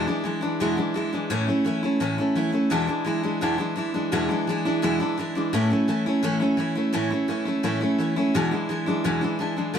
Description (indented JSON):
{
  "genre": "rock",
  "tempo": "170 BPM",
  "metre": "4/4",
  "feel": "straight",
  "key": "A major",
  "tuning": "A4 = 440 Hz",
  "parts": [
    { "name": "picked steel-string acoustic guitar", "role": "solo", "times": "0.0-9.8 s", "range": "E2 to F#4", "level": "-22 LUFS", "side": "equal", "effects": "none" }
  ],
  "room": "moderate studio reverb, RT60 0.7 s",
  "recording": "band playing live in one room",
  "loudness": "-22 LUFS",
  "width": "side -8 dB against mid",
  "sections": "0.0-6.9 A section; 6.9-9.8 A section",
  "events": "none",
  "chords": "0.0 E7; 1.3 A; 2.7 E7; 5.5 A; 8.3 E7"
}